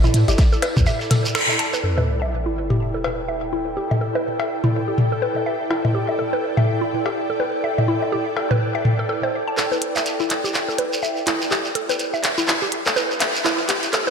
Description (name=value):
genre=minimal techno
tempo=124 BPM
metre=4/4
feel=swing 59% on 16ths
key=unclear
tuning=A4 = 440 Hz
part: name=mallet-like synth pluck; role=riff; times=0.0-14.1 s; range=E4 to A5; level=-24 LUFS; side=equal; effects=chorus, vintage 12-bit sampler grit, sidechain pumping, tape echo
part: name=punchy sub bass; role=bass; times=0.0-0.9 s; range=G1 to A2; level=-18 LUFS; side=equal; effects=sidechain pumping
part: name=vintage drum kit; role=drums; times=0.0-1.7 s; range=hi-hat, snare drum, tambourine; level=-36 LUFS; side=right 1 dB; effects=sidechain pumping on hats, high-pass filter on hats, high-pass filter on snare, sidechain pumping on perc, high-pass filter on perc, high-pass filter on room
part: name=electronic toms, woodblock and cowbell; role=percussion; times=0.0-9.3 s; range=none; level=-22 LUFS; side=left 1 dB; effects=ping-pong delay
part: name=shekere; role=percussion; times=0.0-1.8, 9.6-14.1 s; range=none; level=-29 LUFS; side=right 2 dB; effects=none
part: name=ethereal airy pad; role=texture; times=0.0-14.1 s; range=E4 to G5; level=-26 LUFS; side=equal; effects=ensemble chorus, built-in reverb, sidechain pumping
part: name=minimal click drum kit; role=drums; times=0.1-1.7, 9.6-14.0 s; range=finger snaps, handclaps, hi-hat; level=-22 LUFS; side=equal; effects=none
part: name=electronic kick drum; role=drums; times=0.4-0.8 s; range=none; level=-16 LUFS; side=equal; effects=none
part: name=sub drop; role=sound effects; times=1.8-3.8 s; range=none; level=-26 LUFS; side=equal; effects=none
room=wet lush hall reverb, RT60 1.8 s, digital ambience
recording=dreamy mix soaked in reverb, high-pass filter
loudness=-18 LUFS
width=side -6 dB against mid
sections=0.0-1.8 A section; 1.8-9.6 B section; 9.6-14.1 C section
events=break 0.9-1.8; band accent 1.4; impact 1.8-3.8; filter sweep on synth arpeggio sound 1.8-9.6; build-up 9.6-14.1; drum fill 9.6-14.1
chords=0.0 A7(no3)